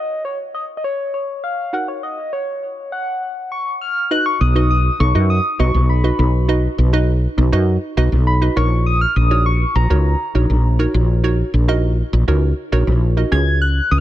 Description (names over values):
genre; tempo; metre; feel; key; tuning
dance-pop; 101 BPM; 4/4; straight; F# major; A4 = 440 Hz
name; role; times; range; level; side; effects
soft struck synth lead; melody; 0.0-14.0 s; C#5 to G#6; -21 LUFS; left 1 dB; chorus, digital delay
hollow square pluck; accompaniment; 0.0-13.9 s; C#4 to D#5; -23 LUFS; right 3 dB; chorus
woody fretless electric bass; bass; 4.4-14.0 s; A#1 to F#2; -14 LUFS; equal; analog chorus
room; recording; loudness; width
little or no reverb; dark, warm production; -15 LUFS; side -13 dB against mid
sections
0.0-4.1 A section; 4.1-14.0 B section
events
drop 4.1-14.0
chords
0.0 F#6; 4.1 B; 8.6 F#6/A#; 13.3 C#sus4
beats
0.55 1.14 | 1.74 2.33 2.92 3.52 | 4.11 4.71 5.30 5.89 | 6.49 7.08 7.67 8.27 | 8.86 9.46 10.05 10.65 | 11.24 11.83 12.43 13.02 | 13.62